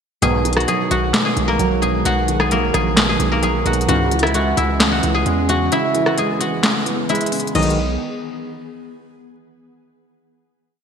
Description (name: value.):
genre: hip hop, trap.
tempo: 131 BPM.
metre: 4/4.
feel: half-time.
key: B major.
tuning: A4 = 439 Hz.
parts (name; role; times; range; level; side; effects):
guzheng; melody; 0.2-7.8 s; A#3 to G#5; -20 LUFS; left 1 dB; low-pass filter.
dark concert grand piano; accompaniment; 0.2-7.8 s; B2 to B3; -23 LUFS; right 4 dB; lush chorus, low-pass filter.
ethereal airy pad; sustained chords; 1.0-7.8 s; D#3 to G#4; -26 LUFS; right 1 dB; ensemble chorus, built-in reverb.
chorused polysynth; stabs; 0.2-0.4, 3.9-4.1, 7.5-7.8 s; B1 to E3; -25 LUFS; left 3 dB; none.
distorted 808-style bass; bass; 0.2-8.0 s; A#1 to E2; -21 LUFS; equal; distortion.
trap drum kit; drums; 0.2-7.8 s; crash cymbal, handclaps, hi-hat, rim click, snare drum; -20 LUFS; left 1 dB; vintage 12-bit sampler grit, gated reverb.
room: wet lush hall reverb, RT60 2.0 s.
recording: bright 1980s-style digital production.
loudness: -15 LUFS.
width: side -7 dB against mid.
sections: 0.2-7.5 hook; 7.5-9.4 final chord.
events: break 5.7-7.5.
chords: 0.2 B6; 3.9 C#m; 7.5 B6.